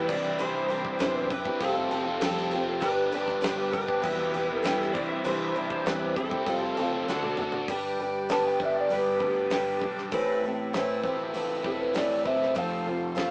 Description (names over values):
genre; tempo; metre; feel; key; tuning
folk rock and heartland rock; 99 BPM; 4/4; straight; G mixolydian from 7.7 s; A4 = 440 Hz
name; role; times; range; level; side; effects
lead guitar through a small cranked amp; melody; 0.0-7.3 s; A4 to E5; -31 LUFS; equal; overdrive
picked steel-string acoustic guitar; accompaniment; 0.0-13.3 s; A2 to C5; -30 LUFS; equal; none
bright tonewheel organ; sustained chords; 0.0-13.3 s; C4 to E6; -39 LUFS; equal; none
overdriven electric guitar; riff; 0.0-13.3 s; E2 to G4; -30 LUFS; equal; phaser
picked electric bass; bass; 0.0-13.3 s; E1 to F#2; -45 LUFS; equal; none
damped 70s drum kit; drums; 0.1-13.3 s; crash cymbal, hi-hat, kick drum, snare drum, toms; -35 LUFS; equal; none
electric slide guitar; second line; 8.3-13.3 s; G4 to A5; -30 LUFS; equal; none
room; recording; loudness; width
wet booth ambience, RT60 0.2 s; rough rehearsal-room recording, small speaker sound; -25 LUFS; side -32 dB against mid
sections
0.0-7.7 A section; 7.7-13.3 B section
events
drum fill 7.1-7.7; electric slide guitar solo 7.7-13.3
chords
0.1 Cadd9; 1.6 Fadd9; 2.8 G; 4.0 Em; 5.0 Cadd9; 6.5 Fadd9; 7.1 D; 7.7 G; 10.1 Amadd9; 12.6 F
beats
| 0.40 1.01 1.61 2.22 | 2.83 3.44 4.04 4.65 | 5.26 5.86 6.47 7.08 | 7.69 8.29 8.90 9.51 | 10.12 10.73 11.34 11.95 | 12.56 13.17